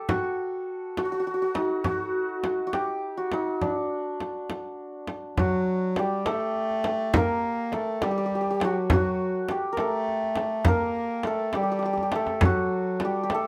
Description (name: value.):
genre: Persian modal ensemble.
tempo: 68 BPM (dotted quarters).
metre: 6/8.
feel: straight.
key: unclear.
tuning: A4 = 440 Hz.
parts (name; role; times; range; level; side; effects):
santur; melody; 0.0-13.5 s; D4 to Bb4; -30 LUFS; equal; none.
frame drum; percussion; 0.1-13.4 s; none; -31 LUFS; equal; none.
clear bass clarinet; second line; 5.4-13.5 s; F#3 to Bb3; -31 LUFS; equal; none.
tombak; percussion; 5.4-13.4 s; none; -30 LUFS; equal; none.
room: moderate studio reverb, RT60 0.6 s.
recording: none.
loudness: -27 LUFS.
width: mono.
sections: 0.0-5.4 A section; 5.4-13.5 B section.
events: drum fill 11.8-12.4.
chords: none.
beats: | 0.09 0.97 | 1.85 2.74 | 3.62 4.50 | 5.38 6.26 | 7.14 8.02 | 8.90 9.78 | 10.66 11.54 | 12.42 13.30.